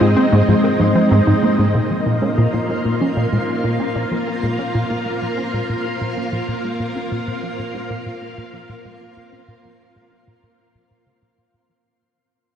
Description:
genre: ambient, sequencer-driven space music.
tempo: 95 BPM.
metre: 4/4.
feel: straight.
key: unclear.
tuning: A4 = 441 Hz.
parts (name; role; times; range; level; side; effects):
string machine, full ensemble; sustained chords; 0.0-11.9 s; Ab3 to F5; -20 LUFS; equal; ensemble chorus.
warbly dusty pluck; arpeggios; 0.0-11.8 s; F3 to Bb4; -24 LUFS; right 2 dB; chorus, auto-pan, ping-pong delay.
plucky analog bass; riff; 0.0-11.8 s; Ab2 to Db4; -20 LUFS; equal; analog chorus, vintage 12-bit sampler grit, ping-pong delay.
twinkling granular texture; texture; 2.0-11.9 s; C4 to C6; -33 LUFS; left 1 dB; built-in reverb, wide subtle chorus.
room: wet huge ambient reverb, RT60 7.8 s.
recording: dreamy mix soaked in reverb, cassette tape.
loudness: -16 LUFS.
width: side -9 dB against mid.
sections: 0.0-1.7 A section; 1.7-11.8 B section.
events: fade-out on synth arpeggio sound 1.7-11.8; fade-out 1.7-11.8; filter sweep on analog synth bass 1.7-11.8.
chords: 0.0 Ab; 1.7 Bbm.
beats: 0.48 1.11 | 1.74 2.38 3.01 3.64 | 4.27 4.90 5.53 6.17 | 6.80 7.43 8.06 8.69 | 9.32 9.95 10.59 11.22.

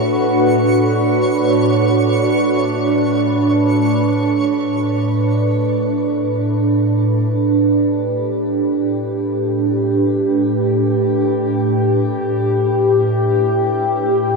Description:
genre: ambient.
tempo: free time.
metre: none.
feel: none.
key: A mixolydian.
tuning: A4 = 440 Hz.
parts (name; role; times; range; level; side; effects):
warbly tape-like pad; sustained chords; 0.0-14.4 s; A2 to B4; -14 LUFS; right 1 dB; chorus, built-in reverb, phaser, shimmer reverb.
twinkling granular texture; texture; 0.0-4.1 s; C#5 to C#6; -26 LUFS; right 2 dB; built-in reverb, shimmer reverb.
room: wet huge ambient reverb, RT60 8.0 s.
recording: none.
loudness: -14 LUFS.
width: side -3 dB against mid.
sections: 0.0-4.1 A section; 4.1-14.4 B section.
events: none.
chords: 0.0 Bm/A; 4.1 A7sus4; 12.1 Em/A.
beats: free time.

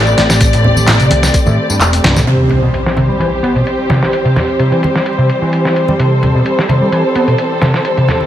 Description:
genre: breakbeat, breaks.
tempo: 129 BPM.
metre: 4/4.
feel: swing 53% on 16ths.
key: unclear.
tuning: A4 = 441 Hz.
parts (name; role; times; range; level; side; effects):
dark studio string section; sustained chords; 0.0-8.3 s; E3 to D5; -14 LUFS; equal; sidechain pumping.
hollow-body short-scale picked electric bass; bass; 0.0-2.2 s; E1 to C2; -14 LUFS; equal; none.
electronic tambourine and handclaps; drums; 0.1-2.2 s; none; -18 LUFS; left 1 dB; studio reverb.
picked electric bass; riff; 0.2-8.1 s; G2 to B3; -14 LUFS; equal; low-pass filter.
dusty soul sampler-style drum kit; drums; 0.2-8.2 s; hi-hat, kick drum, snare drum; -16 LUFS; equal; low-pass filter on hats, studio reverb, low-pass filter on kick, low-pass filter on snare.
congas; percussion; 0.6-8.3 s; none; -20 LUFS; right 2 dB; none.
impact; sound effects; 2.3-4.1 s; none; -22 LUFS; equal; none.
room: light reverb, digital ambience.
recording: vinyl crackle.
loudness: -10 LUFS.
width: side -11 dB against mid.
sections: 0.0-2.3 A section; 2.3-8.3 B section.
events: impact 2.3-4.1.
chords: 0.0 Am7; 2.3 C.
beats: | 0.41 0.88 1.34 1.80 | 2.27 2.73 3.20 3.67 | 4.13 4.60 5.06 5.53 | 5.99 6.46 6.92 7.39 | 7.85.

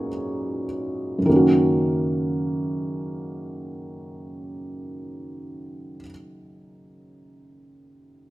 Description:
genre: classical, lyrical solo piano.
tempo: free time.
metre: none.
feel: none.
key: F# major.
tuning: A4 = 440 Hz.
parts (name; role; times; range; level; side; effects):
felt-muted upright piano; solo; 0.0-8.3 s; F#2 to C#5; -23 LUFS; right 1 dB; none.
room: wet recital hall reverb, RT60 1.6 s.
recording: minimal, uncompressed stereo recording.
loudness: -20 LUFS.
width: side -17 dB against mid.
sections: 0.0-1.3 A section; 1.3-5.9 B section.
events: slowing down 0.0-1.3.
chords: 0.0 F#6.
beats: free time.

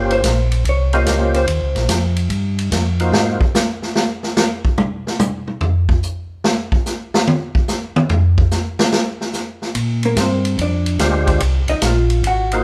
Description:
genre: soul jazz organ trio.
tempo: 145 BPM.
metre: 4/4.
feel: swing 67% on 8ths.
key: unclear.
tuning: A4 = 440 Hz.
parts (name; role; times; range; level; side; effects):
percussive tonewheel organ; melody; 0.0-3.4, 11.0-12.6 s; Ab3 to C5; -22 LUFS; equal; slow rotary speaker, overdrive, chorus vibrato.
vintage hollow-body jazz guitar; accompaniment; 0.0-1.9, 10.1-12.6 s; Bb3 to Gb5; -23 LUFS; equal; none.
mellow tonewheel organ; bass; 0.0-3.4, 9.7-12.6 s; G1 to Bb2; -20 LUFS; equal; slow rotary speaker.
swinging big-band drum kit; drums; 0.1-12.6 s; hi-hat, kick drum, ride cymbal, snare drum, toms; -20 LUFS; equal; none.
room: light reverb.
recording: band playing live in one room.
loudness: -18 LUFS.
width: mono.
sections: 0.0-12.6 A section.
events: hollow-body jazz guitar solo 0.0-12.6; drum solo 3.1-9.8.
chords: 0.0 Eb13; 3.1 Ab13; 4.8 N.C.; 9.8 Bb13; 11.4 Ab13.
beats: 0.24 0.65 1.07 | 1.48 1.89 2.31 2.72 | 3.13 3.55 3.96 4.37 | 4.79 5.20 5.62 6.03 | 6.44 6.86 7.27 7.68 | 8.10 8.51 8.93 9.34 | 9.75 10.17 10.58 10.99 | 11.41 11.82 12.23.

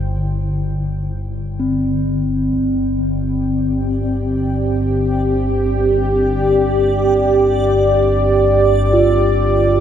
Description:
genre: dark ambient drone.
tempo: 65 BPM.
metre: 4/4.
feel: straight.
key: unclear.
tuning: A4 = 440 Hz.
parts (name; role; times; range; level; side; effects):
dark analog pad; sustained chords; 0.0-9.8 s; G3 to G5; -16 LUFS; equal; chorus.
quartz singing bowl; arpeggios; 0.0-9.8 s; D3 to F4; -20 LUFS; left 1 dB; analog delay.
deep rumbling drone; drone; 0.0-9.8 s; G1 to G2; -20 LUFS; equal; built-in reverb, phaser.
impact; percussion; 2.5-2.7 s; none; barely audible; none; none.
backwards swelling texture; texture; 3.6-9.8 s; D5; -33 LUFS; right 2 dB; built-in reverb.
room: wet lush hall reverb, RT60 2.6 s.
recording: dreamy mix soaked in reverb.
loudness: -14 LUFS.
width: side -9 dB against mid.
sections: 0.0-2.5 A section; 2.5-9.8 A section.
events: fade-in on synth texture 2.5-9.8.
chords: 0.0 G5.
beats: 0.65 1.59 | 2.52 3.45 4.38 5.30 | 6.22 7.13 8.03 8.93.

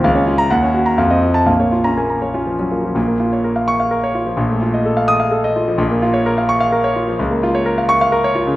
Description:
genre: classical, virtuoso piano study.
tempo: 128 BPM.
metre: 3/4.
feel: rubato.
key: Bb minor.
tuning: A4 = 441 Hz.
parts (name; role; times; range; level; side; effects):
warm concert grand piano; solo; 0.0-8.6 s; Bb1 to Eb6; -14 LUFS; equal; none.
room: wet recital hall reverb, RT60 1.4 s.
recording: none.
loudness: -14 LUFS.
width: side -16 dB against mid.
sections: 0.0-3.0 A section; 3.0-8.6 B section.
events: none.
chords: 0.0 Bbm/Db; 0.5 Ebm7; 1.0 F7; 1.5 Bbm; 4.4 F7/Bb; 5.8 Bbm; 7.2 Bbm/Db.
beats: | 0.04 0.51 0.99 | 1.48 1.98 2.48 | 2.97 3.45 3.92 | 4.39 4.86 5.33 | 5.80 6.27 6.73 | 7.20 7.66 8.13.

